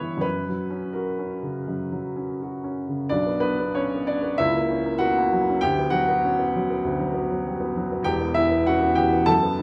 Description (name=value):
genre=classical, romantic character piece for solo piano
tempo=82-100 BPM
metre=4/4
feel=rubato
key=B minor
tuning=A4 = 440 Hz
part: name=warm upright piano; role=solo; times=0.0-9.6 s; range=E1 to A5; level=-24 LUFS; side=equal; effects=none
room=wet recital hall reverb, RT60 1.5 s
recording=none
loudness=-24 LUFS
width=mono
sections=0.0-3.1 A section; 3.1-9.6 A section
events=none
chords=0.2 F#; 3.1 Bm; 4.4 F#7/C#; 5.6 Bm/D; 8.0 Em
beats=| 0.24 0.96 1.68 2.40 | 3.10 3.76 4.38 4.99 | 5.60 6.21 6.81 7.42 | 8.04 8.66 9.29